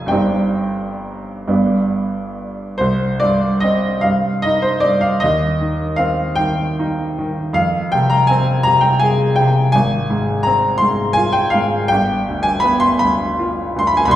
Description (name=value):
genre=classical, romantic nocturne for solo piano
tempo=41-57 BPM (dotted quarters)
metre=6/8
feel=rubato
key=C minor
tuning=A4 = 440 Hz
part: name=clear baby grand piano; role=solo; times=0.0-14.2 s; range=F1 to C6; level=-14 LUFS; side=equal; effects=none
room=wet recital hall reverb, RT60 1.3 s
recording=heard from further back in the room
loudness=-14 LUFS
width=side -12 dB against mid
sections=0.0-2.8 A section; 2.8-14.2 B section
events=none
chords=0.1 Cm/G; 1.5 G; 2.8 Cm; 5.2 Cm/Eb; 7.6 Fm; 9.7 Fm/Ab; 11.9 G7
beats=| 0.11 1.48 | 2.81 4.05 | 5.24 6.39 | 7.57 8.66 | 9.75 10.81 | 11.92 13.03 | 14.15